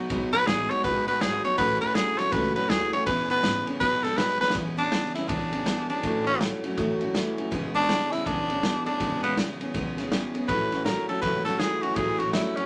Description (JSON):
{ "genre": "rockabilly", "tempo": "162 BPM", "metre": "4/4", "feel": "swing 63% on 8ths", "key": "E major", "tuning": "A4 = 441 Hz", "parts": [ { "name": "picked steel-string acoustic guitar", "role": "accompaniment", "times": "0.0-12.7 s", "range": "A2 to G#4", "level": "-33 LUFS", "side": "equal", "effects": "none" }, { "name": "electric guitar through a small old amp", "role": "riff", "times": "0.0-12.7 s", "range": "E2 to G#3", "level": "-36 LUFS", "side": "equal", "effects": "spring reverb" }, { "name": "upright bass", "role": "bass", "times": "0.1-12.6 s", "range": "E1 to G#2", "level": "-41 LUFS", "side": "equal", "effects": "none" }, { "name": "vintage drum kit", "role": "drums", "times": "0.1-12.6 s", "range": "kick drum, ride cymbal, snare drum", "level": "-33 LUFS", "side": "equal", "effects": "none" }, { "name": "raspy tenor saxophone", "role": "melody", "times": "0.3-12.7 s", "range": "B3 to C#5", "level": "-28 LUFS", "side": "equal", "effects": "none" } ], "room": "moderate club reverb, RT60 0.5 s", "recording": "none", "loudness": "-26 LUFS", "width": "mono", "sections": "0.0-4.5 A section; 4.5-12.7 B section", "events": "tenor saxophone solo 0.0-4.5; drum fill 4.4", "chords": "0.0 B6; 1.6 A6; 3.1 E6; 3.8 B6; 4.5 E6; 6.0 A6; 7.5 E6; 10.5 A6" }